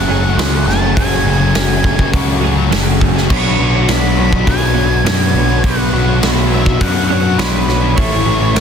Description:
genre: rock, shoegaze and dream pop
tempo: 103 BPM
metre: 4/4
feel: straight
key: unclear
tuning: A4 = 437 Hz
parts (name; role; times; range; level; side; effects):
- octave-fuzz lead guitar; melody; 0.0-8.6 s; B4 to C#6; -21 LUFS; right 2 dB; distortion, slapback echo
- cranked stack guitar; riff; 0.0-8.6 s; F#2 to B3; -20 LUFS; equal; overdrive
- direct-recorded clean electric guitar; riff; 0.0-8.6 s; F#2 to C#5; -21 LUFS; right 12 dB; reverse reverb
- overdriven semi-hollow guitar; riff; 0.0-8.6 s; F#2 to F#4; -19 LUFS; left 12 dB; ensemble chorus
- growling picked electric bass; bass; 0.0-8.6 s; F#1 to F#2; -16 LUFS; equal; overdrive
- big rock drum kit; drums; 0.4-8.6 s; crash cymbal, hi-hat, kick drum, snare drum; -17 LUFS; equal; none
room: small room ambience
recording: dense, heavily limited modern master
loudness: -11 LUFS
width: side -7 dB against mid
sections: 0.0-8.6 A section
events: none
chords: 0.0 F#madd9; 3.3 Bmadd9; 8.0 A

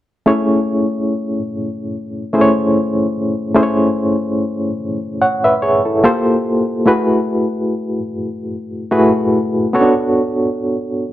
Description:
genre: soul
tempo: 73 BPM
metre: 4/4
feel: swing 54% on 16ths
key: A major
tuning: A4 = 440 Hz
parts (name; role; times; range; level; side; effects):
- barky reed electric piano; solo; 0.3-11.1 s; A3 to F#5; -14 LUFS; equal; overdrive, tremolo
room: moderate echo chamber reverb, RT60 1.4 s, digital ambience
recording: none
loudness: -14 LUFS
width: side -13 dB against mid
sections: 0.3-11.1 A section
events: none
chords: 0.3 Amaj7; 6.0 Gm11; 6.9 F#m11/A; 9.8 Bm9

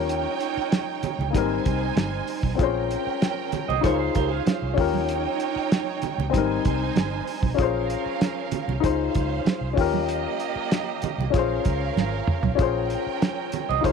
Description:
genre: lush 1970s-style soul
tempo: 96 BPM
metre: 4/4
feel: straight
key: Bb dorian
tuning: A4 = 440 Hz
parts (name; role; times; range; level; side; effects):
- warm studio violin section; second line; 0.0-13.9 s; Bb3 to Ab5; -30 LUFS; right 14 dB; none
- warm baby grand piano; accompaniment; 0.0-13.9 s; G3 to C5; -26 LUFS; left 12 dB; none
- vintage muted fingered electric bass; bass; 0.0-13.9 s; G1 to Eb2; -29 LUFS; right 1 dB; none
- cloth-damped thuddy drum kit; drums; 0.1-13.9 s; hi-hat, kick drum, snare drum, toms; -25 LUFS; right 1 dB; none
- congas; percussion; 0.7-13.9 s; none; -31 LUFS; right 13 dB; none
- electric guitar through a small old amp; riff; 3.7-4.8, 13.7-13.9 s; F4 to Eb5; -26 LUFS; right 16 dB; wide subtle chorus
room: light reverb, small room ambience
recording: 1960s-style stereo with parts hard left and right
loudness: -22 LUFS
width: side -6 dB against mid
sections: 0.0-12.6 A section; 12.6-13.9 A section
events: drum fill 12.0-12.6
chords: 0.0 Eb7; 1.3 Abmaj7; 2.6 Bbm7; 3.8 Dbmaj7; 4.8 Eb7; 6.3 Abmaj7; 7.6 Bbm7; 8.8 Dbmaj7; 9.8 Eb7; 11.3 Bbm7

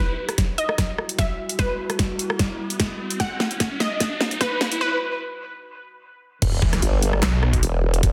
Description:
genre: heavy wobble dubstep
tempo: 149 BPM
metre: 4/4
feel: swing 53% on 16ths, half-time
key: E harmonic minor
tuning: A4 = 440 Hz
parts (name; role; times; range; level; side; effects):
- unison pluck; melody; 0.0-6.3 s; B4 to F#5; -30 LUFS; equal; dub echo
- evolving wavetable pad; sustained chords; 0.0-8.1 s; G3 to F#4; -37 LUFS; equal; phaser, built-in reverb, sidechain pumping
- riser and sub drop; sound effects; 0.0-8.0 s; none; -34 LUFS; equal; none
- dubstep drum kit; drums; 0.3-8.1 s; crash cymbal, handclaps, hi-hat, rim click, snare drum; -27 LUFS; equal; soft clipping on snare, studio reverb
- electronic kick drum; drums; 0.4-8.1 s; none; -25 LUFS; equal; studio reverb
- formant-sweep wobble bass; bass; 6.4-8.1 s; E1 to G1; -23 LUFS; equal; chorus, overdrive
- snarling distorted saw bass; bass; 6.6-7.6 s; E1 to B1; -23 LUFS; equal; distortion, overdrive
room: moderate digital room reverb, RT60 1.3 s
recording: dense, heavily limited modern master, high-pass filter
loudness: -23 LUFS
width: mono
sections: 0.0-6.4 A section; 6.4-8.1 B section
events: build-up 0.0-6.4; drum fill 0.0-4.8; riser 0.0-4.8; break 4.8-6.4; drop 6.4-8.1; impact 6.4-8.0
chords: 0.0 Emadd9

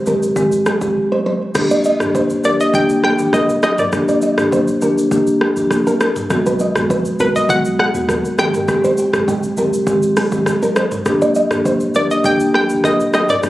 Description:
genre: afrobeats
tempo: 101 BPM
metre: 4/4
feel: straight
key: Eb major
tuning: A4 = 440 Hz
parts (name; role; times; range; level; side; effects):
- marimba with medium mallets; accompaniment; 0.1-13.5 s; Eb3 to G4; -16 LUFS; equal; none
- nylon-string guitar; riff; 0.1-13.4 s; G4 to Eb5; -21 LUFS; right 1 dB; digital delay
- punchy sub bass; bass; 0.1-13.5 s; D1 to D#2; -29 LUFS; right 2 dB; none
- afro-pop drum kit; drums; 0.1-13.5 s; crash cymbal, hi-hat, kick drum, rim click, shaker, toms; -21 LUFS; equal; overdrive
- hollow square pluck; melody; 2.5-13.5 s; B4 to G5; -18 LUFS; equal; chorus, digital delay
room: light reverb, digital ambience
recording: recorded on a phone in the room, club reverb, compression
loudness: -13 LUFS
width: side -16 dB against mid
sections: 0.0-1.6 A section; 1.6-13.5 B section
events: break 1.0-1.6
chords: 0.0 Abmaj7; 1.6 Ebmaj7; 6.3 B6; 8.4 Abmaj7; 11.1 Ebmaj7

